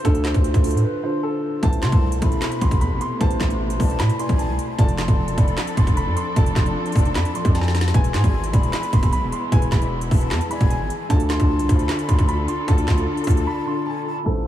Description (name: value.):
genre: hip hop, trap.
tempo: 152 BPM.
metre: 4/4.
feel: half-time.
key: A harmonic minor.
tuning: A4 = 440 Hz.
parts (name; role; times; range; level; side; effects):
dark concert grand piano; melody; 0.0-14.4 s; A4 to C6; -29 LUFS; right 1 dB; low-pass filter, tape echo.
felt-muted upright piano; accompaniment; 0.0-14.5 s; D3 to D5; -27 LUFS; right 1 dB; lush chorus, low-pass filter.
distorted 808-style bass; bass; 0.0-14.5 s; E1 to C3; -22 LUFS; equal; distortion.
trap drum kit; drums; 0.0-14.4 s; handclaps, hi-hat, kick drum, snare drum; -20 LUFS; equal; overdrive.
dark symphonic string section; sustained chords; 1.6-14.5 s; B2 to A4; -29 LUFS; left 1 dB; none.
breathy mellow concert flute; second line; 1.8-14.2 s; G#5 to B5; -33 LUFS; left 4 dB; tape echo.
room: light reverb, studio ambience.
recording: low-pass filter, small room ambience.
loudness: -18 LUFS.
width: side -12 dB against mid.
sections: 0.0-1.6 A section; 1.6-14.3 B section.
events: break 0.8-1.6, 13.5-14.3; drum fill 7.5-7.9.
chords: 0.0 Dm; 1.6 Amadd9; 4.8 F6; 7.9 E; 11.1 Dm.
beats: | 0.05 0.44 0.84 1.23 | 1.63 2.02 2.42 2.81 | 3.21 3.60 4.00 4.39 | 4.79 5.18 5.57 5.97 | 6.36 6.76 7.15 7.55 | 7.94 8.34 8.73 9.13 | 9.52 9.92 10.31 10.71 | 11.10 11.49 11.89 12.29 | 12.68 13.07 13.47 13.86 | 14.26.